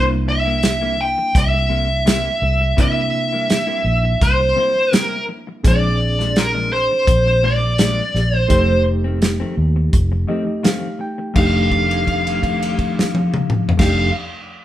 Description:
straight-eighth soul blues; 84 BPM; 4/4; swing 53% on 16ths; A4 = 441 Hz
dark smooth lead guitar; melody; 0.0-14.1 s; Bb4 to G5; -18 LUFS; equal; overdrive
reed electric piano; accompaniment; 0.0-14.1 s; A3 to G5; -25 LUFS; right 1 dB; fast tremolo
clean electric guitar; stabs; 0.0-14.1 s; F2 to E4; -26 LUFS; left 5 dB; spring reverb
vintage muted fingered electric bass; bass; 0.0-14.1 s; F1 to C3; -20 LUFS; equal
warm soul drum kit; drums; 0.6-14.0 s; crash cymbal, hi-hat, kick drum, snare drum, toms; -18 LUFS; equal
light reverb; band playing live in one room; -15 LUFS; side -13 dB against mid
0.0-11.4 A section; 11.4-14.2 B section
reed electric piano fill 9.9-11.4; held note 11.4-13.8
0.0 C7; 5.6 Bb7; 8.5 F7; 11.4 F13
0.63 1.35 2.06 | 2.78 3.50 4.21 4.93 | 5.64 6.36 7.07 7.79 | 8.50 9.22 9.93 10.64 | 11.36 12.07 12.79 13.50

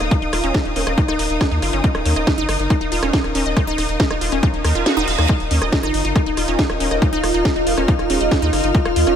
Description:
psychedelic trance; 139 BPM; 4/4; straight; A4 = 437 Hz
formant-sweep wobble bass; second line; 0.0-0.9, 6.9-8.5 s; Ab3 to Bb3; -32 LUFS; equal
round analog bass; bass; 0.0-9.1 s; Eb1 to Eb2; -22 LUFS; equal
techno drum kit; drums; 0.0-9.2 s; hi-hat, rim click, snare drum; -24 LUFS; equal
rich studio string section; texture; 0.0-9.2 s; Eb4 to F6; -26 LUFS; left 2 dB; sidechain pumping
wide unison pluck; riff; 0.1-9.1 s; Db4 to F5; -22 LUFS; moving between left 4 dB and right 4 dB; auto-pan, sidechain pumping, ping-pong delay
electronic kick drum; drums; 0.1-8.8 s; -17 LUFS; equal
reverse cymbal; sound effects; 4.6-5.3 s; -27 LUFS; right 6 dB
evolving wavetable pad; sustained chords; 5.7-9.2 s; F4; -22 LUFS; right 1 dB; chorus, built-in reverb, sidechain pumping
light reverb, digital ambience; -16 LUFS; side -8 dB against mid
0.0-9.2 A section
reverse cymbal 4.6-5.3; kick drops out 4.9-5.3
0.0 Eb5
| 0.11 0.54 0.98 1.41 | 1.84 2.27 2.70 3.13 | 3.57 4.00 4.43 4.86 | 5.29 5.72 6.16 6.59 | 7.02 7.45 7.88 8.31 | 8.75

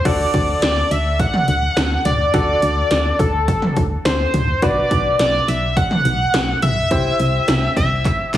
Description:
synth-pop; 105 BPM; 4/4; straight; D mixolydian; A4 = 440 Hz
octave-doubled lead; melody; 0.0-8.3 s; A4 to F#5; -19 LUFS; equal; chorus, analog delay
bright grand piano; accompaniment; 0.1-8.4 s; D4 to C5; -25 LUFS; left 2 dB
solid FM bass; bass; 0.1-8.4 s; B1 to D2; -20 LUFS; equal
80s electronic pad drums; drums; 0.1-8.4 s; crash cymbal, handclaps, hi-hat, kick drum, snare drum, toms; -20 LUFS; equal; gated reverb on snare and toms
light reverb, digital ambience; heavily compressed radio sound, small room reverb; -15 LUFS; side -12 dB against mid
0.1-8.4 A section
drum fill 8.1-8.4
0.1 D; 4.6 Bm; 6.9 C
| 0.05 0.62 1.20 1.77 | 2.34 2.91 3.48 4.05 | 4.62 5.20 5.77 6.34 | 6.91 7.48 8.05

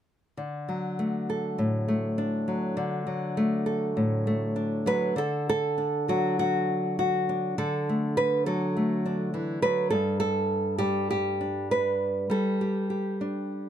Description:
folk, solo fingerstyle acoustic guitar; 100 BPM; 4/4; rubato; D major; A4 = 440 Hz
nylon-string guitar; solo; 0.4-13.7 s; G2 to B4; -25 LUFS; equal
light reverb; dark, warm production; -25 LUFS; side -10 dB against mid
0.4-5.2 A section; 5.2-13.7 B section
0.4 D; 9.9 Gadd9
| 0.37 0.98 1.58 2.17 | 2.77 3.36 3.95 4.56 | 5.17 5.77 6.37 6.97 | 7.57 8.17 8.76 9.34 | 9.92 10.51 11.11 11.71 | 12.31 12.91 13.52

